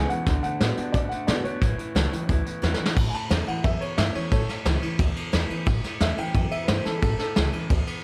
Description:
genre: rockabilly.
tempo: 178 BPM.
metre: 4/4.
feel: straight.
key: A mixolydian.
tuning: A4 = 440 Hz.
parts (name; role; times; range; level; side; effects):
warm upright piano; melody; 0.0-7.9 s; G#4 to A5; -34 LUFS; equal; none.
picked steel-string acoustic guitar; accompaniment; 0.0-8.0 s; E2 to F#4; -34 LUFS; equal; none.
electric guitar through a small old amp; riff; 0.0-3.0 s; E2 to B3; -35 LUFS; equal; none.
upright bass; bass; 0.0-7.9 s; A1 to B2; -29 LUFS; equal; none.
vintage brush drum kit; drums; 0.1-8.0 s; crash cymbal, hi-hat, kick drum, ride cymbal, snare drum; -28 LUFS; equal; none.
room: light reverb.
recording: none.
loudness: -25 LUFS.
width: mono.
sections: 0.0-3.0 A section; 3.0-8.0 B section.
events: drum fill 2.6-3.0; upright piano solo 3.0-8.0.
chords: 0.3 D; 1.6 A.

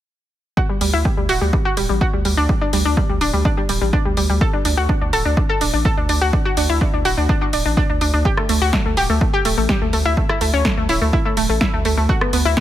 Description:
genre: progressive house.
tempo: 125 BPM.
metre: 4/4.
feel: straight.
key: D major.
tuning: A4 = 443 Hz.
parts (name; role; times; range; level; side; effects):
analog pluck; arpeggios; 0.6-12.6 s; G3 to A4; -20 LUFS; equal; chorus, sidechain pumping, digital delay.
electronic kick drum; drums; 0.6-12.6 s; none; -20 LUFS; equal; none.
saturated sub bass; bass; 0.8-12.6 s; D1 to D2; -21 LUFS; equal; sidechain pumping.
house drum kit; drums; 0.8-12.6 s; hi-hat, rim click, snare drum; -24 LUFS; equal; none.
room: light reverb, digital ambience.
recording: none.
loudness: -15 LUFS.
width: side -12 dB against mid.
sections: 0.6-12.6 A section.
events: none.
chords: 0.6 G5/D; 4.4 D5; 12.1 Bm.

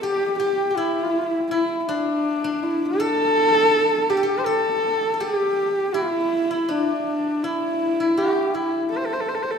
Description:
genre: mongolian traditional, Mongolian folk.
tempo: 81 BPM.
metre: 4/4.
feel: straight.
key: unclear.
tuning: A4 = 444 Hz.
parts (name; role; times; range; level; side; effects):
warm horsehead fiddle; melody; 0.0-9.6 s; D4 to C5; -20 LUFS; equal; none.
steel-string zither; second line; 0.0-9.6 s; D4 to A4; -26 LUFS; left 1 dB; none.
room: wet concert hall reverb, RT60 2.2 s.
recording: minimal, uncompressed stereo recording.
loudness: -19 LUFS.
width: side -6 dB against mid.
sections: 0.0-9.6 A section.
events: none.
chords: none.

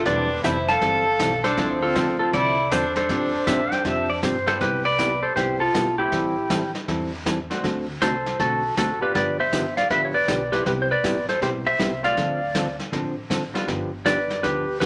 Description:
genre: country, western swing.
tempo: 158 BPM.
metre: 4/4.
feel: swing 65% on 8ths.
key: C major.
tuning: A4 = 439 Hz.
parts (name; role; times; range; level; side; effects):
clean lap steel guitar; melody; 0.0-14.9 s; E4 to A5; -25 LUFS; equal; none.
warm fiddle; second line; 0.0-4.2 s; C4 to A4; -28 LUFS; equal; none.
upright bass; bass; 0.0-14.9 s; E1 to A2; -37 LUFS; equal; none.
bright upright piano; accompaniment; 0.1-2.2, 4.5-13.7 s; F3 to G4; -35 LUFS; equal; none.
hollow-body jazz guitar; accompaniment; 0.1-14.9 s; C3 to A4; -30 LUFS; equal; none.
vintage brush drum kit; drums; 0.1-14.9 s; brushed snare drum, hi-hat, kick drum, snare drum; -32 LUFS; equal; none.
pedal steel guitar; second line; 3.5-4.5 s; C5 to G5; -28 LUFS; equal; none.
room: moderate club reverb, RT60 0.8 s.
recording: none.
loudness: -23 LUFS.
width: mono.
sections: 0.0-4.6 A section; 4.6-14.9 B section.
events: none.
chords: 0.1 Am11/E; 1.6 Dm9; 3.1 G9sus4; 4.6 Cmaj7; 6.1 Am7; 7.6 D7; 9.2 G7; 10.7 Cmaj7; 12.2 Dm7; 13.7 G7.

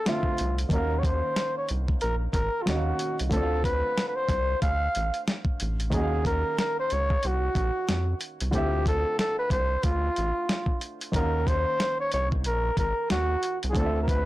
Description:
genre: R&B, neo-soul.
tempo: 92 BPM.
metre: 4/4.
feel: swing 59% on 16ths.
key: Eb dorian.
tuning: A4 = 440 Hz.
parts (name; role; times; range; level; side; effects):
warm flugelhorn; melody; 0.0-14.3 s; F4 to F5; -28 LUFS; equal; plate reverb.
warm baby grand piano; accompaniment; 0.0-14.3 s; D3 to F5; -34 LUFS; right 1 dB; plate reverb.
dusty soul sampler-style drum kit; drums; 0.1-14.3 s; hi-hat, kick drum, snare drum; -28 LUFS; equal; overdrive.
rubbery square bass; bass; 0.4-14.3 s; Ab1 to F2; -28 LUFS; equal; tube saturation.
room: light reverb.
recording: blown-out, overdriven recording, overdrive, lossy compression artefacts.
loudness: -24 LUFS.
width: side -16 dB against mid.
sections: 0.0-14.3 A section.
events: none.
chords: 0.0 Dm9; 0.7 Ebm9; 3.3 Dm7; 5.9 Ebm9; 8.5 Dm9; 11.1 Ebm9; 13.7 Dm9.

